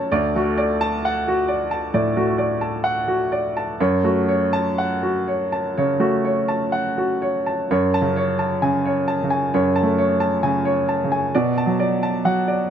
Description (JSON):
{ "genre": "neoclassical minimalist piano", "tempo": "60-68 BPM", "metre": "4/4", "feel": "rubato", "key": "F# minor", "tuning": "A4 = 440 Hz", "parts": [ { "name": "bright baby grand piano", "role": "solo", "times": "0.0-12.7 s", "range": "D2 to C#7", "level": "-18 LUFS", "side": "equal", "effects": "none" } ], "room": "light reverb", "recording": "dark, warm production", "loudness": "-18 LUFS", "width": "side -9 dB against mid", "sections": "0.0-7.7 A section; 7.7-12.7 B section", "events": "none", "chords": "0.1 D; 3.8 F#m; 7.7 F#madd9; 11.3 Bm7", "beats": "| 0.11 1.01 1.91 2.83 | 3.79 4.78 5.77 6.74 | 7.70 8.63 9.52 10.42 | 11.34 12.25" }